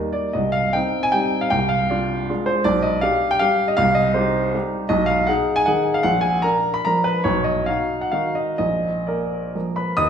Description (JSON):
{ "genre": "classical, romantic triple-time dance for piano with dotted rhythms", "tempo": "121-172 BPM", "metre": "3/4", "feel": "rubato", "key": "C minor", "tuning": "A4 = 439 Hz", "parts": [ { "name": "warm baby grand piano", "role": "solo", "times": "0.0-10.1 s", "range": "Bb1 to Eb6", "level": "-18 LUFS", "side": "equal", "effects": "none" } ], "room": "wet recital hall reverb, RT60 1.5 s", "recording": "heard from further back in the room", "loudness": "-18 LUFS", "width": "side -7 dB against mid", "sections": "0.3-10.0 A section", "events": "none", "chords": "0.3 Cm; 1.5 Dm7b5/C; 2.7 G/B; 3.8 Cm; 4.9 Abm/Cb; 6.1 Bb; 7.3 B; 8.6 Bb", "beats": "| 0.35 0.74 1.13 | 1.50 1.90 2.29 | 2.65 3.03 3.41 | 3.78 4.16 4.54 | 4.90 5.27 5.67 | 6.05 6.45 6.86 | 7.26 7.68 8.14 | 8.60 9.08 9.54 | 9.97" }